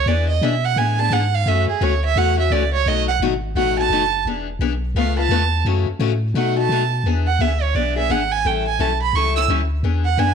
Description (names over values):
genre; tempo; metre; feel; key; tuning
acoustic string swing (jazz manouche); 172 BPM; 4/4; swing 61% on 8ths; E mixolydian; A4 = 439 Hz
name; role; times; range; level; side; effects
warm violin; melody; 0.0-10.3 s; G#4 to E6; -20 LUFS; right 11 dB; slapback echo
punchy sub bass; bass; 0.0-10.3 s; E1 to B2; -20 LUFS; equal; none
picked steel-string acoustic guitar; accompaniment; 0.1-10.3 s; B2 to B4; -23 LUFS; left 13 dB; none
room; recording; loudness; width
light reverb, studio reverb; 1960s-style stereo with parts hard left and right; -17 LUFS; side -7 dB against mid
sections
0.0-7.1 A section; 7.1-10.3 A section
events
violin solo 0.0-10.3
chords
0.1 E7; 1.5 F#m7; 2.9 B7; 4.3 E7; 5.0 C#7alt; 5.7 F#m7; 6.4 B7; 7.1 E7; 8.4 A7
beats
| 0.07 0.42 0.77 1.12 | 1.47 1.82 2.17 2.52 | 2.87 3.21 3.56 3.91 | 4.26 4.61 4.96 5.31 | 5.66 6.01 6.35 6.70 | 7.05 7.40 7.75 8.10 | 8.45 8.80 9.14 9.49 | 9.84 10.19